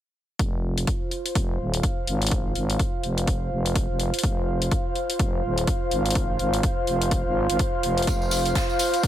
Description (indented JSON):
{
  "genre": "bass house",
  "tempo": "125 BPM",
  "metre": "4/4",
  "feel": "swing 59% on 16ths",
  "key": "F minor",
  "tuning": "A4 = 440 Hz",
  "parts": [
    { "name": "growling FM bass", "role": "bass", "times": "0.4-9.1 s", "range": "Eb1 to Ab1", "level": "-26 LUFS", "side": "equal", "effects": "tube saturation, sidechain pumping" },
    { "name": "electronic hi-hat", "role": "drums", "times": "0.4-9.1 s", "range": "none", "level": "-29 LUFS", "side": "left 2 dB", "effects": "none" },
    { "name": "electronic kick drum", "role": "drums", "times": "0.4-9.1 s", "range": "none", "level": "-26 LUFS", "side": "equal", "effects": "none" },
    { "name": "airy breathy pad", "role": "texture", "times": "0.4-9.1 s", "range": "F4 to F5", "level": "-27 LUFS", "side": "equal", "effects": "chorus, sidechain pumping" },
    { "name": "swinging big-band drum kit", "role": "drums", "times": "8.1-9.1 s", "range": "hi-hat, snare drum", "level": "-34 LUFS", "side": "right 2 dB", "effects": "sidechain pumping on hats, high-pass filter on hats, high-pass filter on snare, high-pass filter on room" },
    { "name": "tambourine", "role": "percussion", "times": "8.1-9.1 s", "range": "none", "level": "-32 LUFS", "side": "right 1 dB", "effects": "none" }
  ],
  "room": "light reverb, small room ambience",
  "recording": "none",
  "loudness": "-22 LUFS",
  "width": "side -12 dB against mid",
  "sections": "0.4-9.1 A section",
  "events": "none",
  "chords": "0.4 F5",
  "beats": "| 0.39 0.87 1.35 1.83 | 2.31 2.79 3.27 3.75 | 4.23 4.71 5.19 5.67 | 6.15 6.63 7.11 7.59 | 8.07 8.55 9.03"
}